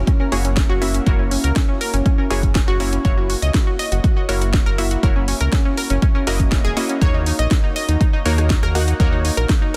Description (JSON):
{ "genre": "progressive house", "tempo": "121 BPM", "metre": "4/4", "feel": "straight", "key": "F# mixolydian", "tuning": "A4 = 440 Hz", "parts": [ { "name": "analog pluck", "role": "arpeggios", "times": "0.0-9.8 s", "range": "C#4 to D#5", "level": "-26 LUFS", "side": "equal", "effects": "chorus, sidechain pumping, tape echo" }, { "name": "supersaw stab", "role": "stabs", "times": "0.0-9.8 s", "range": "A#3 to F#5", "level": "-28 LUFS", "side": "equal", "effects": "sidechain pumping, low-pass filter, tape echo" }, { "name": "round analog bass", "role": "bass", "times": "0.0-9.5 s", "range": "E1 to D#2", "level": "-22 LUFS", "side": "equal", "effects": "sidechain pumping" }, { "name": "electronic kick drum", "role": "drums", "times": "0.1-9.6 s", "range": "none", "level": "-19 LUFS", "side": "equal", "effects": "overdrive, small room ambience" }, { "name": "house drum kit", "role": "drums", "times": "0.1-9.8 s", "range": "hi-hat, rim click, snare drum", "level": "-28 LUFS", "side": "equal", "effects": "overdrive, small room ambience" } ], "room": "little or no reverb", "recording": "dense, heavily limited modern master", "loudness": "-18 LUFS", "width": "mono", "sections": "0.0-9.8 A section", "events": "none", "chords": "0.0 F#7; 7.0 D#m7" }